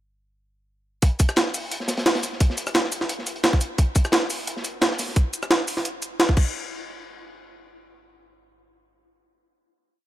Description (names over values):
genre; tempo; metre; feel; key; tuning
drum and bass; 174 BPM; 4/4; straight; none; none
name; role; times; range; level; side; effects
crunchy breakbeat drum kit; drums; 1.0-5.2 s; hi-hat, snare drum; -30 LUFS; equal; high-pass filter on hats, high-pass filter on snare, high-pass filter on room
electronic kick drum; drums; 1.0-6.4 s; none; -18 LUFS; equal; none
jungle sampler-style drum kit; drums; 1.0-6.4 s; crash cymbal, hi-hat, rim click, shaker, snare drum; -23 LUFS; right 1 dB; overdrive
room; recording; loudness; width
studio reverb; none; -20 LUFS; side -14 dB against mid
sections
1.0-6.5 drop; 6.5-9.3 final hit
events
drop 1.0-6.5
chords
none